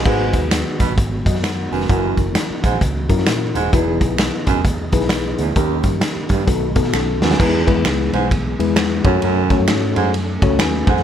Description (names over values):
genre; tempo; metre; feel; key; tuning
uptempo 1960s-style soul; 131 BPM; 4/4; swing 61% on 8ths; E major from 7.4 s; A4 = 439 Hz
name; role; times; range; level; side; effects
mellow reed electric piano; accompaniment; 0.0-11.0 s; G#3 to G#5; -21 LUFS; left 6 dB; fast tremolo
mellow tonewheel organ; sustained chords; 0.0-11.0 s; D#3 to D#5; -27 LUFS; right 1 dB; fast rotary speaker, chorus vibrato
mellow baritone saxophone; riff; 0.0-11.0 s; D#2 to B2; -21 LUFS; right 7 dB; none
vintage muted fingered electric bass; bass; 0.0-11.0 s; D#1 to B2; -23 LUFS; equal; none
raw garage drum kit; drums; 0.1-11.0 s; crash cymbal, hi-hat, kick drum, ride cymbal, snare drum; -18 LUFS; equal; none
finger snap; percussion; 0.5-10.7 s; none; -24 LUFS; right 4 dB; none
room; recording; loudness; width
light reverb; none; -15 LUFS; side -9 dB against mid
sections
0.1-7.4 A section; 7.4-11.0 B section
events
drum fill 6.9-7.4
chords
0.1 G#m7; 1.9 F#7; 3.7 Emaj7; 5.6 D#7; 6.5 B7; 7.4 E; 9.0 F#m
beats
| 0.06 0.52 0.98 1.44 | 1.89 2.35 2.81 3.27 | 3.73 4.19 4.64 5.10 | 5.56 6.02 6.48 6.93 | 7.39 7.85 8.31 8.77 | 9.23 9.69 10.14 10.60